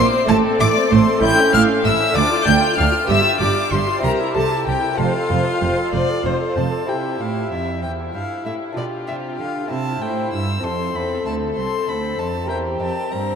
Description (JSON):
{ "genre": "classical, baroque-style concerto movement with solo episodes", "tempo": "64 BPM (dotted quarters)", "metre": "6/8", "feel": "straight", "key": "F major, C major from 6.9 s", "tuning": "A4 = 442 Hz", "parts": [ { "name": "rich chamber violin section", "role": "melody", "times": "0.0-13.4 s", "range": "G4 to G6", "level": "-29 LUFS", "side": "left 6 dB", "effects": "none" }, { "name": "rich violin", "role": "melody", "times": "0.0-13.4 s", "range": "C5 to G6", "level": "-23 LUFS", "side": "left 3 dB", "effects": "none" }, { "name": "rich chamber violin section", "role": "second line", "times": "0.0-13.4 s", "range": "E4 to G5", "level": "-24 LUFS", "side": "left 3 dB", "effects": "none" }, { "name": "lute", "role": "accompaniment", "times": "0.0-13.4 s", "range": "D2 to Bb4", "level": "-25 LUFS", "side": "left 1 dB", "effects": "none" }, { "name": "rich chamber viola section", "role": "accompaniment", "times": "0.0-13.4 s", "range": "A3 to C5", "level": "-24 LUFS", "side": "right 1 dB", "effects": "none" }, { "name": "rich studio cello section", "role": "bass", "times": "0.0-13.4 s", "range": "C2 to D3", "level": "-24 LUFS", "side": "right 5 dB", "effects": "none" }, { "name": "warm chamber double bass section", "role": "bass", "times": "0.0-6.6 s", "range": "F1 to D2", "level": "-23 LUFS", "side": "right 5 dB", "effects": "none" } ], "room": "wet cathedral reverb, RT60 6.3 s", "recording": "in a vast, echoing space", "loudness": "-16 LUFS", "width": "side -7 dB against mid", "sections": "0.0-6.9 A section; 6.9-13.4 B section", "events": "none", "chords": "0.3 F/A; 1.2 A; 2.2 Dm; 3.1 G7; 4.0 C; 5.0 F; 6.9 C; 8.8 G7/B; 9.7 C; 10.6 F; 12.5 C7/E" }